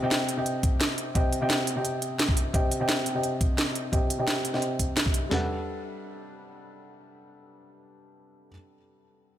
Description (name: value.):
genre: liquid drum and bass.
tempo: 173 BPM.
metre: 4/4.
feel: swing 53% on 16ths.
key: G major.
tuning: A4 = 438 Hz.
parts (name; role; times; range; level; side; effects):
felt-muted upright piano; accompaniment; 0.0-9.4 s; C3 to G5; -30 LUFS; equal; low-pass filter, ping-pong delay.
garage drum kit; drums; 0.1-5.2 s; hi-hat, snare drum; -28 LUFS; right 1 dB; none.
breakbeat sampler-style drum kit; drums; 0.6-5.4 s; kick drum, snare drum, toms; -26 LUFS; equal; none.
room: light reverb, digital ambience.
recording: none.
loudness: -24 LUFS.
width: side -12 dB against mid.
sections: 0.0-5.3 A section; 5.3-8.1 B section.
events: filter sweep on felt piano 0.0-5.3.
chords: 0.0 Cm; 5.3 Gmaj9.